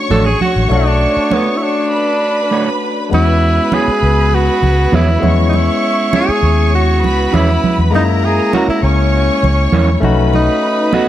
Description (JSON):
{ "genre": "lush 1970s-style soul", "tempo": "100 BPM", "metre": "4/4", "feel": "straight", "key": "E major", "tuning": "A4 = 440 Hz", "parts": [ { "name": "warm symphonic violin section", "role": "second line", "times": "0.0-11.1 s", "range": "A#4 to C#6", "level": "-20 LUFS", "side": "left 1 dB", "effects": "none" }, { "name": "barky tine electric piano", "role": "accompaniment", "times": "0.0-11.1 s", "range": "G#3 to C#5", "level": "-18 LUFS", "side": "moving between left 6 dB and equal", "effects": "overdrive, auto-pan" }, { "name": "breathy tenor saxophone", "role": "melody", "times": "0.1-11.1 s", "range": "B3 to A4", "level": "-17 LUFS", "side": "right 2 dB", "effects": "analog delay" }, { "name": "mellow electric guitar", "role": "riff", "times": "0.1-11.1 s", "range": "A3 to D#5", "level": "-21 LUFS", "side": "right 4 dB", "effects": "none" }, { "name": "vintage muted fingered electric bass", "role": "bass", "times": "0.1-10.5 s", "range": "A1 to F#2", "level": "-14 LUFS", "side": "equal", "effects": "none" }, { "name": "congas", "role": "percussion", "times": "0.1-11.1 s", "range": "none", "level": "-19 LUFS", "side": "right 5 dB", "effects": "none" } ], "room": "light reverb, studio reverb", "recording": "dark, warm production", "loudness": "-11 LUFS", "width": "side -12 dB against mid", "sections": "0.0-3.1 A section; 3.1-11.1 B section", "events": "break 1.9-3.1", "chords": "0.0 Bm9; 3.1 E6; 5.2 C#m11; 7.9 F#7; 10.0 B7" }